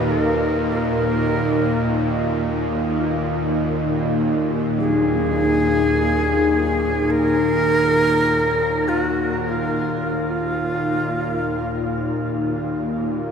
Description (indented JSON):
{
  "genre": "dark ambient drone",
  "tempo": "free time",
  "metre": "none",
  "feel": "none",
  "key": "Eb harmonic minor",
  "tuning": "A4 = 435 Hz",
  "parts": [
    { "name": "breathy bright shakuhachi", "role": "melody", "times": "0.0-13.0 s", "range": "F4 to Cb5", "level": "-22 LUFS", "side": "equal", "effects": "shimmer reverb, tape echo" },
    { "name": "deep dark ambient pad", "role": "sustained chords", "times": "0.0-13.3 s", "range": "Eb4 to F5", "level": "-23 LUFS", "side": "left 1 dB", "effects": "chorus, built-in reverb, shimmer reverb" },
    { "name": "bowed-like drone", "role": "drone", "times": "0.0-13.3 s", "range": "Eb2 to Bb2", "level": "-22 LUFS", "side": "equal", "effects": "built-in reverb" },
    { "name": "gamelan-type bronze metallophone", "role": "arpeggios", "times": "3.0-13.3 s", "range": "Gb3 to F4", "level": "-35 LUFS", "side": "left 2 dB", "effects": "none" }
  ],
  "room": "wet cathedral reverb, RT60 6.4 s",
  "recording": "in a vast, echoing space",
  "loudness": "-18 LUFS",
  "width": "side -6 dB against mid",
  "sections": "0.0-13.3 A section",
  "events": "none",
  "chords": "0.0 Ebmadd9"
}